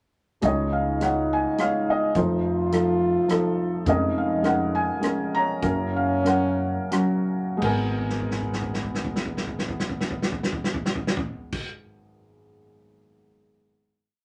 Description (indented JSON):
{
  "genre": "acoustic folk-pop ballad",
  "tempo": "83-106 BPM",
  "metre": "3/4",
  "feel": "straight",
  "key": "G# dorian",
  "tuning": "A4 = 443 Hz",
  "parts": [
    { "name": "felt-muted upright piano", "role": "melody", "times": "0.4-14.2 s", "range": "F1 to A#5", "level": "-26 LUFS", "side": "equal", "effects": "none" },
    { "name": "mellow French horn", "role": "second line", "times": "0.4-11.6 s", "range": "B3 to F4", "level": "-31 LUFS", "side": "equal", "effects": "none" },
    { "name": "upright bass", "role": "bass", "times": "0.4-11.6 s", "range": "G#1 to F#2", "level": "-34 LUFS", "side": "equal", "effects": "none" },
    { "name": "natural country drum kit", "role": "drums", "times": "0.4-11.7 s", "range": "crash cymbal, hi-hat, kick drum, rim click, snare drum, toms", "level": "-31 LUFS", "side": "equal", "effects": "none" }
  ],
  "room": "moderate club reverb, RT60 0.6 s",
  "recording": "none",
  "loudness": "-25 LUFS",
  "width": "mono",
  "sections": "0.4-7.6 pre-chorus; 7.6-11.9 final chord",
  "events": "slowing down 3.9-7.6; drum fill 8.0-11.5",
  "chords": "0.4 C#sus2; 2.2 F7; 5.6 F#; 7.6 G#madd9"
}